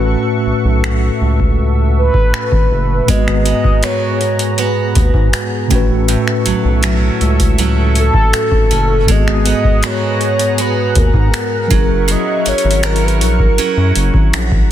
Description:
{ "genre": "contemporary R&B", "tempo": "80 BPM", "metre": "4/4", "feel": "straight", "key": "unclear", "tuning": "A4 = 440 Hz", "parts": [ { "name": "mellow tine electric piano", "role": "accompaniment", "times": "0.0-14.7 s", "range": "G#2 to B4", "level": "-18 LUFS", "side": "equal", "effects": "medium stereo tremolo" }, { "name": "lush unison pad", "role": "sustained chords", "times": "0.0-14.7 s", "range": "B3 to C#6", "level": "-24 LUFS", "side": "equal", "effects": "chorus, sidechain pumping" }, { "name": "round analog bass", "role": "bass", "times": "0.0-14.6 s", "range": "F#1 to G#2", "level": "-15 LUFS", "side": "equal", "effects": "none" }, { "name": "booming analog drum machine", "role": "drums", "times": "0.8-14.7 s", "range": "finger snaps, hi-hat, kick drum", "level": "-15 LUFS", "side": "equal", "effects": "soft clipping on snare" }, { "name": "mellow horn-like synth lead", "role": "melody", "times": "2.0-14.7 s", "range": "A4 to D#5", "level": "-18 LUFS", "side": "equal", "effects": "chorus, tape echo" }, { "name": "picked steel-string acoustic guitar", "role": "arpeggios", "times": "3.1-14.7 s", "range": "A2 to A#4", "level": "-22 LUFS", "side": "right 8 dB", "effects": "tape echo" } ], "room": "digital ambience", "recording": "dense, heavily limited modern master", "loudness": "-11 LUFS", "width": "side -11 dB against mid", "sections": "0.0-14.7 A section", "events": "break 0.0-3.1", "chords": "0.0 A6; 3.1 G#m9; 5.7 A6; 9.1 G#m9; 11.7 F#7", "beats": "| 0.08 0.83 1.58 2.33 | 3.08 3.83 4.58 5.33 | 6.08 6.83 7.58 8.33 | 9.08 9.83 10.58 11.33 | 12.08 12.83 13.58 14.33" }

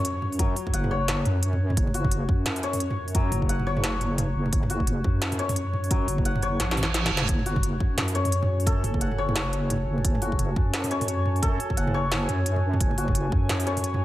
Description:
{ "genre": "half-time drum and bass", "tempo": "174 BPM", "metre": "4/4", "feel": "swing 60% on 16ths, half-time", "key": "F# minor", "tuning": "A4 = 440 Hz", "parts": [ { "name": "santur", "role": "arpeggios", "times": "0.0-14.0 s", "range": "F#3 to F#5", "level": "-31 LUFS", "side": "left 4 dB", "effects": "dub echo" }, { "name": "deep soft wobble bass", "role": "bass", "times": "0.0-14.0 s", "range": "F#1 to F#2", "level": "-26 LUFS", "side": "equal", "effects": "chorus" }, { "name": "industrial drum kit", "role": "drums", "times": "0.0-14.0 s", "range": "hi-hat, snare drum, toms", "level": "-29 LUFS", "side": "right 1 dB", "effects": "none" }, { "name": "electronic kick drum", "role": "drums", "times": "0.4-13.4 s", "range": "none", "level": "-25 LUFS", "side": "equal", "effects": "none" }, { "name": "reverse cymbal", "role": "sound effects", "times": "6.8-7.3 s", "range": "none", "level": "-32 LUFS", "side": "right 8 dB", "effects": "none" }, { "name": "dark analog pad", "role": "sustained chords", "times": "8.1-14.0 s", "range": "F#4 to B5", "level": "-34 LUFS", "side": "right 1 dB", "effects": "chorus, phaser, sidechain pumping" } ], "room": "light reverb", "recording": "none", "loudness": "-22 LUFS", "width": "side -15 dB against mid", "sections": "0.0-14.0 A section", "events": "drum fill 6.6-7.3; reverse cymbal 6.8-7.3; kick drops out 6.9-7.3", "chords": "0.0 F#madd9", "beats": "0.05 | 0.39 0.74 1.08 1.43 | 1.77 2.12 2.46 2.81 | 3.15 3.49 3.84 4.18 | 4.53 4.87 5.22 5.56 | 5.91 6.25 6.60 6.94 | 7.29 7.63 7.98 8.32 | 8.67 9.01 9.36 9.70 | 10.05 10.39 10.74 11.08 | 11.43 11.77 12.12 12.46 | 12.80 13.15 13.49 13.84" }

